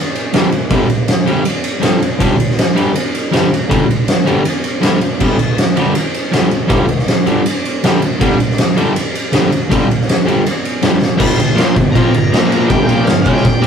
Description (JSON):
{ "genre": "garage rock duo or trio", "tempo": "160 BPM", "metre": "4/4", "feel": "straight", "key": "G minor", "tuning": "A4 = 440 Hz", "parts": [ { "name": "oversized low-tuned drum kit", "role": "drums", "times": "0.2-13.7 s", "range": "crash cymbal, kick drum, ride cymbal, snare drum", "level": "-13 LUFS", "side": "equal", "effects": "none" }, { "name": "fuzz guitar", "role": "riff", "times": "0.3-13.7 s", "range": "G2 to F4", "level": "-15 LUFS", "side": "equal", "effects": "distortion" }, { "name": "octave-fuzz lead guitar", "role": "melody", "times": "11.2-13.7 s", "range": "F5 to C6", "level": "-22 LUFS", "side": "equal", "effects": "distortion" } ], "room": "moderate booth ambience, RT60 0.2 s", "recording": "rough rehearsal-room recording, warm saturation", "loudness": "-11 LUFS", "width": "side -7 dB against mid", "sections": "0.0-11.2 A section; 11.2-13.7 B section", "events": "drum fill 11.0", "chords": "0.0 G5; 11.2 Gm; 12.3 Bb5; 12.7 Gm" }